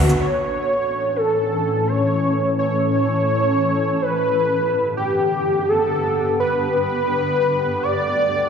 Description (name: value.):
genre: house.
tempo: free time.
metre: none.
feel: none.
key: unclear.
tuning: A4 = 439 Hz.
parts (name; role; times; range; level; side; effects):
wide unison lead; melody; 0.0-8.5 s; F#4 to D5; -19 LUFS; equal; analog chorus, dub echo.
shimmering ambient pad; sustained chords; 0.1-8.5 s; D2 to A4; -23 LUFS; left 1 dB; chorus, built-in reverb.
room: wet lush hall reverb, RT60 2.4 s.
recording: played on a big sound system in a bare room, large studio reverb.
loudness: -17 LUFS.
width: side -6 dB against mid.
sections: 0.2-8.5 A section.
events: none.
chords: 0.2 A; 4.0 G; 7.8 D.